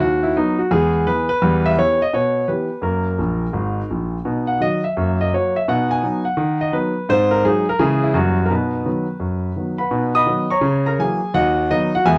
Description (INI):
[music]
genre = jazz, stride piano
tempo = 169 BPM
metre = 4/4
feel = swing 65% on 8ths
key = B major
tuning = A4 = 436 Hz
[part]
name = warm concert grand piano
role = solo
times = 0.0-12.2 s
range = G#1 to D#6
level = -19 LUFS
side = equal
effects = none
[sound]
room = moderate booth ambience, RT60 0.3 s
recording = none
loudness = -19 LUFS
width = mono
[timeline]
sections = 0.0-9.9 A section; 9.9-12.2 A section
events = grand piano fill 3.2-4.2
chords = 0.0 B/D#; 0.7 E; 1.4 Em; 2.8 F#; 4.2 B; 5.0 F#; 5.7 B; 6.4 B/D#; 7.1 G#7; 7.8 C#m; 8.2 F#7b9; 8.5 B; 10.6 F#7/C#; 11.3 B/D#